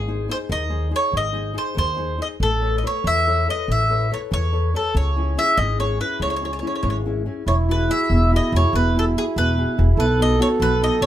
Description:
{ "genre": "italian folk, Italian serenade", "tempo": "95 BPM (dotted quarters)", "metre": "6/8", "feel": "straight", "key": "C# minor, E major from 7.5 s", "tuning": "A4 = 440 Hz", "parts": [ { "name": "mandolin", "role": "melody", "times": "0.0-11.1 s", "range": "G#4 to E5", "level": "-22 LUFS", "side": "equal", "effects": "none" }, { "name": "nylon-string guitar", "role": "accompaniment", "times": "0.0-11.1 s", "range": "B2 to C#5", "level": "-26 LUFS", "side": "left 3 dB", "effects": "none" }, { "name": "upright bass", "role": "bass", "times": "0.0-11.1 s", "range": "E1 to E2", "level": "-21 LUFS", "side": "equal", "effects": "none" }, { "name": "mellow accordion", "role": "second line", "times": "7.5-11.1 s", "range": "E4 to A4", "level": "-23 LUFS", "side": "right 4 dB", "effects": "none" } ], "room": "light reverb", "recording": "none", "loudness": "-18 LUFS", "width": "side -12 dB against mid", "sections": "0.0-7.5 A section; 7.5-11.1 B section", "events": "none", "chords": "0.0 G#; 2.4 Aadd9; 4.9 C#m; 7.5 Eadd9; 10.0 B", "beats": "0.50 | 1.13 1.76 | 2.40 3.05 | 3.69 4.32 | 4.95 5.57 | 6.20 6.83 | 7.47 8.10 | 8.73 9.36 | 9.98 10.60" }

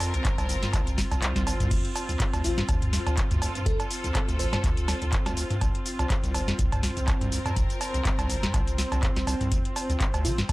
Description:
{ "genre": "acid house", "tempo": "123 BPM", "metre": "4/4", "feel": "swing 56% on 16ths", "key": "D minor", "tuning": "A4 = 441 Hz", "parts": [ { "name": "warm analog pad", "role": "sustained chords", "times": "0.0-10.5 s", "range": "C4 to C5", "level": "-37 LUFS", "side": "equal", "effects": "chorus, sidechain pumping" }, { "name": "acid bass, square", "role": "riff", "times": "0.0-10.5 s", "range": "D1 to D3", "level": "-30 LUFS", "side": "equal", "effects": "overdrive" }, { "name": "booming analog drum machine", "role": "drums", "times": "0.0-10.5 s", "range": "cowbell, crash cymbal, handclaps, hi-hat, shaker, snare drum, toms", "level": "-30 LUFS", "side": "equal", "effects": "none" }, { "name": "clear studio string section", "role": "texture", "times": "0.0-10.5 s", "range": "C4 to Bb4", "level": "-35 LUFS", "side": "equal", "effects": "sidechain pumping" }, { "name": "warm sub bass", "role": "bass", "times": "0.1-10.5 s", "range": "G1 to D2", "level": "-30 LUFS", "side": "equal", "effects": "sidechain pumping" }, { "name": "electronic kick drum", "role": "drums", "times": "0.2-10.5 s", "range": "none", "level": "-28 LUFS", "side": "equal", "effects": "none" }, { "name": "bell-like FM electric piano", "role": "melody", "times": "2.4-4.6, 10.2-10.4 s", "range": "F4 to C5", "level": "-35 LUFS", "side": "left 1 dB", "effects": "chorus, tremolo, dub echo" } ], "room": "little or no reverb", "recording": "none", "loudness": "-24 LUFS", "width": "side -19 dB against mid", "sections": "0.0-10.5 A section", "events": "kick drops out 1.2-1.7", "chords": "0.0 C5; 1.7 Dm7; 5.6 C7(no3); 9.5 Dm7", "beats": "0.25 0.73 1.22 | 1.71 2.20 2.69 3.17 | 3.66 4.15 4.64 5.12 | 5.61 6.10 6.59 7.08 | 7.56 8.05 8.54 9.03 | 9.52 10.00 10.49" }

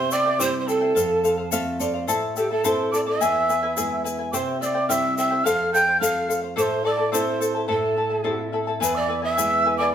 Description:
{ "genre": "andean folk, Andean ensemble", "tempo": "107 BPM", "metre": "2/4", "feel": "straight", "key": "A minor", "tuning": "A4 = 441 Hz", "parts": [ { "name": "breathy reedy pan flute", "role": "melody", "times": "0.0-9.9 s", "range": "G4 to G5", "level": "-25 LUFS", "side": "right 2 dB", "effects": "none" }, { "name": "breathy quena", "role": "second line", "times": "0.0-9.9 s", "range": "G5 to G6", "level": "-25 LUFS", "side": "right 2 dB", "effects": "none" }, { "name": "charango", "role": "accompaniment", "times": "0.0-9.9 s", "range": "E4 to A5", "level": "-24 LUFS", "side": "left 2 dB", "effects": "none" }, { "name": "nylon-string guitar", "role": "accompaniment", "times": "0.0-9.9 s", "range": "E2 to E5", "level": "-30 LUFS", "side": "right 2 dB", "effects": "none" }, { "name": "tube shaker", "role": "percussion", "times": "0.1-9.5 s", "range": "none", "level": "-31 LUFS", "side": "left 7 dB", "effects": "none" } ], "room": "wet stone room reverb, RT60 0.9 s", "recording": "band playing live in one room", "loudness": "-20 LUFS", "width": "side -9 dB against mid", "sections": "0.0-8.8 A section; 8.8-9.9 B section", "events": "nylon-string guitar fill 1.2-2.1", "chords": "0.0 C; 1.0 F; 2.1 Am; 3.2 E; 4.3 C; 5.5 F; 6.6 Am; 8.8 E", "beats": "0.40 | 0.96 1.52 | 2.08 2.64 | 3.20 3.77 | 4.33 4.89 | 5.45 6.01 | 6.58 7.14 | 7.70 8.26 | 8.82 9.39" }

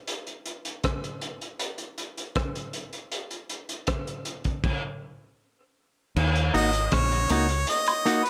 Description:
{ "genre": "dub reggae", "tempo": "79 BPM", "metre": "4/4", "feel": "straight", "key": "Eb minor", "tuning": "A4 = 439 Hz", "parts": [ { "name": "crunchy breakbeat drum kit", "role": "drums", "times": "0.1-8.3 s", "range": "crash cymbal, hi-hat, kick drum, rim click", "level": "-32 LUFS", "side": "equal", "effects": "none" }, { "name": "deep dub fingered electric bass", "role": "bass", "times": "6.2-7.6 s", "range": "Ab1 to Eb2", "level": "-28 LUFS", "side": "equal", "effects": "none" }, { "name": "clean electric guitar", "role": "accompaniment", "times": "6.5-8.2 s", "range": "Bb3 to Gb4", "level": "-29 LUFS", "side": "equal", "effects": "dub echo" }, { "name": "tambourine and woodblock", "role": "percussion", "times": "6.5-8.2 s", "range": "none", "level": "-31 LUFS", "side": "equal", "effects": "none" }, { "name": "bright harmonica", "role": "melody", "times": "6.6-8.3 s", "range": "Cb5 to Eb5", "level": "-28 LUFS", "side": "equal", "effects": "dub echo" } ], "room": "light reverb, small room ambience", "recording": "none", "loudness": "-28 LUFS", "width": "mono", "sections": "0.0-6.2 A section; 6.2-8.3 B section", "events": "break 0.0-6.2; stop 4.6-6.2", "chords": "0.0 N.C.; 6.2 Ebm", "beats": "| 0.08 0.84 1.60 2.36 | 3.12 3.88 4.64 5.40 | 6.16 6.92 7.68" }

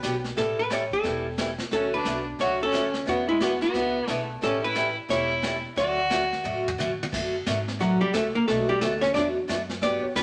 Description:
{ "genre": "country, western swing", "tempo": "178 BPM", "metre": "4/4", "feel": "swing 62% on 8ths", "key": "D major", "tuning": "A4 = 440 Hz", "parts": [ { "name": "archtop guitar, miked and amplified", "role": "melody", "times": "0.0-10.2 s", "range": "F#3 to D5", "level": "-28 LUFS", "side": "equal", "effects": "none" }, { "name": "picked swing-style acoustic guitar", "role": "accompaniment", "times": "0.0-10.2 s", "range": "B2 to A4", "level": "-33 LUFS", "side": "equal", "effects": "none" }, { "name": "upright bass", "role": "bass", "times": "0.0-10.2 s", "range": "E1 to G2", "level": "-40 LUFS", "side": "equal", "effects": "none" }, { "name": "vintage brush drum kit", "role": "drums", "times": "0.0-10.2 s", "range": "brushed snare drum, crash cymbal, hi-hat, kick drum, snare drum, toms", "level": "-36 LUFS", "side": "equal", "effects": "none" }, { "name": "clear fiddle", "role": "second line", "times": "1.7-6.8 s", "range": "G#3 to F#4", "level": "-30 LUFS", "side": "equal", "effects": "none" } ], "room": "wet studio reverb, RT60 1.0 s", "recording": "none", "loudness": "-26 LUFS", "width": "mono", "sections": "0.0-7.1 A section; 7.1-10.2 B section", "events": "drum fill 6.4-7.1; hollow-body jazz guitar solo 7.1-10.2", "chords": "0.4 A7; 1.7 Dmaj7; 3.1 E7; 4.4 A7; 5.8 Dmaj7; 8.5 Bm7", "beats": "0.03 | 0.37 0.70 1.04 1.38 | 1.72 2.05 2.39 2.73 | 3.07 3.40 3.74 4.08 | 4.42 4.76 5.09 5.43 | 5.77 6.11 6.45 6.78 | 7.12 7.46 7.80 8.13 | 8.47 8.81 9.15 9.48 | 9.82 10.16" }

